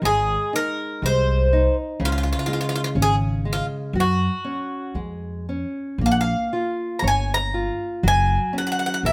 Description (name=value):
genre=fado-style ballad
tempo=60 BPM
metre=2/4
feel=rubato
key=F# major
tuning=A4 = 439 Hz
part: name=Greek bouzouki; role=melody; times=0.0-9.1 s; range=E#4 to A#5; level=-25 LUFS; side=equal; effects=none
part: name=nylon-string guitar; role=accompaniment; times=0.0-9.1 s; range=C#3 to C#5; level=-30 LUFS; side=equal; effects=none
part: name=upright bass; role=bass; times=0.0-9.1 s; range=F#1 to F#2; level=-25 LUFS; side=equal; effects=none
room=light reverb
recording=band playing live in one room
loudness=-22 LUFS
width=mono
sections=0.0-6.0 A section; 6.0-9.1 A section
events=none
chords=0.0 G#; 2.0 C#5; 3.9 F#sus2; 6.0 A#m; 8.0 F#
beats=| 0.02 1.01 | 1.99 2.96 | 3.94 4.95 | 5.99 7.03 | 8.04 9.04